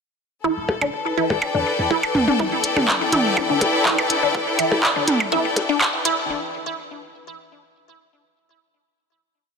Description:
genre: minimal techno.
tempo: 123 BPM.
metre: 4/4.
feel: straight.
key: E minor.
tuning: A4 = 439 Hz.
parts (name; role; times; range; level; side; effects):
resonant blip pluck; riff; 0.4-6.1 s; D4 to E4; -24 LUFS; equal; phaser, sidechain pumping, digital delay.
bubbling stepped-filter texture; texture; 1.0-6.3 s; B4; -31 LUFS; right 1 dB; chorus, built-in reverb, sidechain pumping.
rich studio string section; texture; 0.4-6.3 s; E4 to G5; -23 LUFS; left 4 dB; sidechain pumping.
punchy sub bass; bass; 0.6-2.2 s; E1 to E2; -30 LUFS; equal; sidechain pumping, high-pass filter.
electronic percussion blips and toms; percussion; 0.7-5.9 s; none; -23 LUFS; right 1 dB; ping-pong delay.
electronic kick drum; drums; 2.4-5.9 s; none; -33 LUFS; left 1 dB; high-pass filter on kick.
minimal click drum kit; drums; 2.6-6.2 s; handclaps, hi-hat; -22 LUFS; equal; high-pass filter on hats, high-pass filter on snare.
room: moderate lush hall reverb, RT60 2.2 s.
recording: dense, heavily limited modern master, high-pass filter.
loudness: -18 LUFS.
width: side -5 dB against mid.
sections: 0.4-2.4 intro; 2.4-6.3 build.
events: build-up 2.4-6.3; filter sweep on synth arpeggio sound 2.4-6.3.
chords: 0.4 Em.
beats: | 0.44 0.93 1.42 1.91 | 2.39 2.88 3.37 3.86 | 4.34 4.83 5.32 5.81.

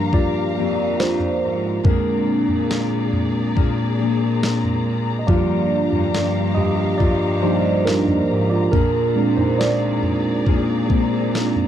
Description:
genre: pop ballad.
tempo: 70 BPM.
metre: 4/4.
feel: straight.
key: unclear.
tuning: A4 = 439 Hz.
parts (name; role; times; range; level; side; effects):
mellow tine electric piano; accompaniment; 0.0-11.7 s; F3 to Eb5; -20 LUFS; right 4 dB; phaser.
warm studio string section; sustained chords; 0.0-11.7 s; G4 to Bb5; -29 LUFS; left 6 dB; none.
fingerpicked steel-string acoustic guitar; arpeggios; 0.0-11.7 s; G2 to Ab4; -26 LUFS; left 18 dB; none.
clear studio cello section; bass; 0.0-11.7 s; F2 to Bb2; -23 LUFS; equal; none.
smooth R&B drum kit; drums; 0.1-11.7 s; kick drum, snare drum, toms; -21 LUFS; equal; none.
room: little or no reverb.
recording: dry, close 1970s-style studio recording.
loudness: -17 LUFS.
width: side -10 dB against mid.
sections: 0.0-11.7 A section.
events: tine electric piano solo 0.0-11.7.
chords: 0.0 Gm7; 1.9 Bb7; 5.3 Gm7; 8.7 Bb7.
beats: 0.13 0.99 | 1.85 2.71 3.56 4.42 | 5.28 6.13 7.00 7.86 | 8.73 9.60 10.46 11.34.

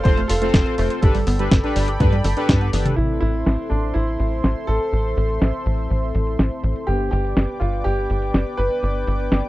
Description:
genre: italo disco.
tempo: 123 BPM.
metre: 4/4.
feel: straight.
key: A minor.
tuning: A4 = 440 Hz.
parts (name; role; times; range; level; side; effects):
clear concert grand piano; melody; 0.0-9.5 s; D4 to C5; -26 LUFS; right 1 dB; tape echo.
warm analog pad; sustained chords; 0.0-9.5 s; A4 to D6; -28 LUFS; equal; chorus.
analog pluck; arpeggios; 0.0-3.0 s; G3 to C5; -29 LUFS; right 4 dB; chorus, tape echo.
tight sequencer bass; bass; 0.0-9.4 s; F1 to G2; -21 LUFS; equal; none.
analog synth brass; stabs; 0.1-9.5 s; B3 to C5; -29 LUFS; left 2 dB; chorus, tape echo.
clean 12-bit digital drum machine; drums; 0.1-9.5 s; hi-hat, snare drum, toms; -21 LUFS; equal; low-pass filter on hats, low-pass filter on snare, low-pass filter on toms.
electronic kick drum; drums; 0.1-2.6 s; none; -19 LUFS; equal; none.
room: little or no reverb.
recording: dry, close 1970s-style studio recording.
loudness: -18 LUFS.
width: side -17 dB against mid.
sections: 0.0-3.0 A section; 3.0-9.5 B section.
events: band accent 2.5; drum fill 2.7; filter sweep on analog polysynth 3.0-9.5.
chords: 0.0 F; 1.0 Gadd9; 3.0 Am; 6.9 G.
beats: 0.05 0.54 | 1.03 1.51 2.00 2.49 | 2.98 3.46 3.95 4.44 | 4.93 5.42 5.90 6.39 | 6.88 7.37 7.86 8.34 | 8.83 9.32.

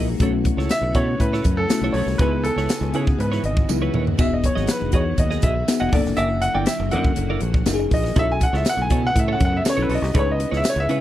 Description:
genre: polished 1980s jazz-funk pop.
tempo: 121 BPM.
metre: 4/4.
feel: straight.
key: unclear.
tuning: A4 = 438 Hz.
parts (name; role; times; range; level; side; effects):
bell-like FM electric piano; accompaniment; 0.0-11.0 s; A3 to G#5; -26 LUFS; left 5 dB; lush chorus.
string machine, full ensemble; sustained chords; 0.0-11.0 s; C#3 to F#4; -32 LUFS; equal; ensemble chorus.
clean electric guitar; riff; 0.0-11.0 s; E4 to D#5; -29 LUFS; right 5 dB; analog chorus.
fingered electric bass; bass; 0.0-11.0 s; E1 to C#3; -24 LUFS; equal; none.
crisp fusion drum kit; drums; 0.2-11.0 s; hi-hat, kick drum, snare drum, splash cymbal, toms; -22 LUFS; equal; none.
warm grand piano; melody; 0.7-11.0 s; G#4 to G#5; -24 LUFS; equal; none.
tambourine; percussion; 0.7-10.8 s; none; -33 LUFS; right 14 dB; none.
room: little or no reverb.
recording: dry, close 1970s-style studio recording.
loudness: -18 LUFS.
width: side -13 dB against mid.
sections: 0.0-11.0 A section.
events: grand piano solo 0.0-11.0; drum fill 3.7-4.2.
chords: 0.2 B9sus4; 2.2 C#m7; 4.2 Emaj9; 5.9 F#7alt; 7.7 F#13; 8.2 B9sus4; 10.2 C#m7.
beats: | 0.20 0.70 1.20 1.70 | 2.20 2.69 3.19 3.69 | 4.19 4.69 5.18 5.68 | 6.18 6.68 7.17 7.67 | 8.17 8.66 9.16 9.65 | 10.15 10.64.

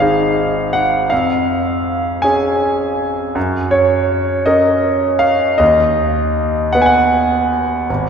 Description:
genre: classical, romantic nocturne for solo piano.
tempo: 53 BPM (dotted quarters).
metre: 12/8.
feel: rubato.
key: unclear.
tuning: A4 = 439 Hz.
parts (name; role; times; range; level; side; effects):
clear concert grand piano; solo; 0.0-8.1 s; Ab1 to Ab5; -13 LUFS; equal; none.
room: wet church reverb, RT60 3.6 s.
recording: minimal, uncompressed stereo recording.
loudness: -13 LUFS.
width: side -6 dB against mid.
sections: 0.0-8.1 A section.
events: none.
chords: 0.0 Ab5; 1.1 Db/F; 3.4 Gb; 5.6 B/D#.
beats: 0.01 1.11 2.23 | 3.36 4.47 5.61 6.75 | 7.89.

